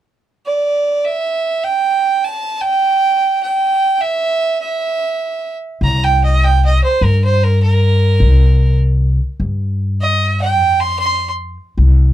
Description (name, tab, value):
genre	acoustic country blues, solo or duo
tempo	100 BPM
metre	4/4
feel	swing 64% on 8ths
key	C mixolydian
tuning	A4 = 439 Hz
part	bright fiddle	melody	0.5-11.3 s	Bb4 to C6	-15 LUFS	right 3 dB	none
part	upright bass	bass	5.8-12.1 s	C2 to G2	-12 LUFS	left 1 dB	none
room	wet booth ambience, RT60 0.2 s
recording	heard from further back in the room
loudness	-13 LUFS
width	side -12 dB against mid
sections	0.0-1.0 A section; 1.0-5.8 B section; 5.8-12.1 C section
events	fiddle solo 5.8-12.1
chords	0.0 N.C.; 5.8 C5; 10.6 F5